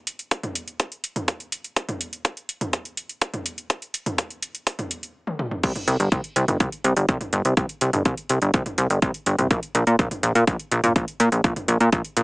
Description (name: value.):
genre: melodic techno.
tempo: 124 BPM.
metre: 4/4.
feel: straight.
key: unclear.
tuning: A4 = 439 Hz.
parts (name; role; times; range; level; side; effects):
house drum kit; drums; 0.1-12.2 s; crash cymbal, hi-hat, toms; -29 LUFS; equal; none.
electronic kick drum; drums; 0.3-12.0 s; none; -22 LUFS; equal; high-pass filter on kick, high-pass filter on room.
plucky analog bass; bass; 5.6-12.2 s; G1 to Bb2; -19 LUFS; equal; sidechain pumping.
room: little or no reverb.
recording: small speaker sound.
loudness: -21 LUFS.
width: side -28 dB against mid.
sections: 0.0-5.6 A section; 5.6-12.2 B section.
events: build-up 0.0-5.6; drum fill 5.3-5.6; drop 5.6-12.2.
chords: none.